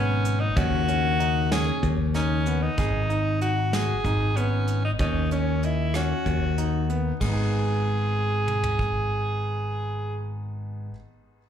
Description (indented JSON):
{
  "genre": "progressive instrumental, band music in an uneven meter",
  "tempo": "190 BPM (eighths)",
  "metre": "7/8",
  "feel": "straight",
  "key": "G# minor",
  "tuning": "A4 = 439 Hz",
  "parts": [
    { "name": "edgy alto saxophone", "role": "melody", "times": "0.0-10.2 s", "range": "C#4 to G#4", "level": "-28 LUFS", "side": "equal", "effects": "slapback echo" },
    { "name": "overdriven tine electric piano", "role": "accompaniment", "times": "0.0-2.7 s", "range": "B2 to A#3", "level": "-35 LUFS", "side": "left 5 dB", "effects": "none" },
    { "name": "bright grand piano", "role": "arpeggios", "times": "0.0-10.9 s", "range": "G#3 to D#5", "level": "-32 LUFS", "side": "right 4 dB", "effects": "slapback echo, ping-pong delay" },
    { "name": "modern bright picked electric bass", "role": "bass", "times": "0.0-10.9 s", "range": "G#1 to D#2", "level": "-25 LUFS", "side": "left 1 dB", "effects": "none" },
    { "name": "soft brush drum kit", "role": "drums", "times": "0.2-8.9 s", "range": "hi-hat, kick drum, ride cymbal, rim click, snare drum, toms", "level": "-31 LUFS", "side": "equal", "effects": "none" }
  ],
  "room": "little or no reverb",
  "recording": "live gig heard through the venue's PA, club reverb",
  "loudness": "-22 LUFS",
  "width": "side -9 dB against mid",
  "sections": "0.0-7.2 A section; 7.2-9.4 B section",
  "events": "none",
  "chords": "0.0 G#m7; 0.6 D#m7; 2.8 G#m; 5.0 D#m7; 7.2 G#m"
}